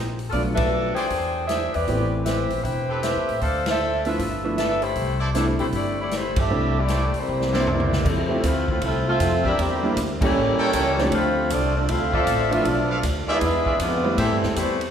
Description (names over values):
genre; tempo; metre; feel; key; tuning
jazz, big band swing; 156 BPM; 4/4; swing 64% on 8ths; C major, F major from 8.1 s; A4 = 440 Hz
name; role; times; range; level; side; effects
clear saxophone section; melody; 0.0-14.8 s; F3 to G5; -24 LUFS; left 1 dB; none
upright bass; bass; 0.0-14.9 s; E1 to A2; -26 LUFS; equal; none
swinging big-band drum kit; drums; 0.2-14.9 s; crash cymbal, hi-hat, kick drum, ride cymbal, snare drum, toms; -29 LUFS; equal; none
clear concert grand piano; accompaniment; 0.3-14.2 s; E3 to A4; -27 LUFS; right 1 dB; none
clear trumpet section; stabs; 1.0-14.4 s; C4 to G5; -29 LUFS; equal; none
clear trombone section; second line; 7.2-14.8 s; C3 to F4; -27 LUFS; right 3 dB; none
room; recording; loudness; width
wet scoring stage reverb, RT60 1.6 s; recorded in a church or concert hall; -20 LUFS; side -8 dB against mid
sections
0.0-8.1 A section; 8.1-14.9 B section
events
band accent 0.5, 3.6, 6.3, 10.2; drum fill 7.3-8.1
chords
0.3 Bm7b5; 1.1 E7alt; 1.9 Am9; 3.4 Dm7; 4.2 G13; 5.0 C69; 7.3 C9; 8.1 Fmaj7; 9.6 Em7b5; 10.4 A7b9; 11.1 Dm9; 12.7 Bm7b5; 13.4 E7b9; 14.2 Am7